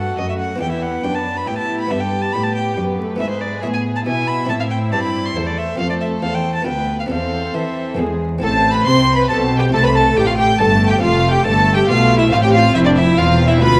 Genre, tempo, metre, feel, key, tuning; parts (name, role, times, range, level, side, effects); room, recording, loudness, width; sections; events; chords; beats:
classical, baroque-style concerto movement with solo episodes; 139 BPM; 3/4; straight; E minor, A minor from 3.2 s; A4 = 440 Hz
rich chamber violin section; melody; 0.0-13.8 s; F#4 to C6; -26 LUFS; equal
rich violin; melody; 0.0-13.8 s; C5 to C6; -23 LUFS; equal
warm chamber violin section; second line; 0.0-13.8 s; D4 to C5; -24 LUFS; equal
buff-stop harpsichord; accompaniment; 0.0-13.8 s; D2 to B4; -30 LUFS; equal
dark chamber viola section; accompaniment; 0.0-13.8 s; G#3 to F4; -25 LUFS; equal
warm chamber cello section; bass; 0.0-13.8 s; D2 to E3; -24 LUFS; equal
rich chamber double bass section; bass; 8.4-13.8 s; E1 to D2; -21 LUFS; equal
wet recital hall reverb, RT60 1.7 s; vinyl crackle; -17 LUFS; mono
0.0-8.4 A section; 8.4-13.8 B section
0.0 B7/F# (rootless); 0.6 Em; 1.9 Em/G; 3.2 E/G#; 4.5 Am; 5.8 F; 6.7 Bm7b5/D; 7.1 Am/E; 8.0 E; 8.4 Am; 11.0 F
0.18 | 0.61 1.04 1.48 | 1.91 2.34 2.77 | 3.21 3.64 4.07 | 4.50 4.93 5.36 | 5.79 6.23 6.66 | 7.10 7.54 7.98 | 8.42 8.86 9.29 | 9.73 10.16 10.59 | 11.03 11.46 11.89 | 12.32 12.75 13.18 | 13.62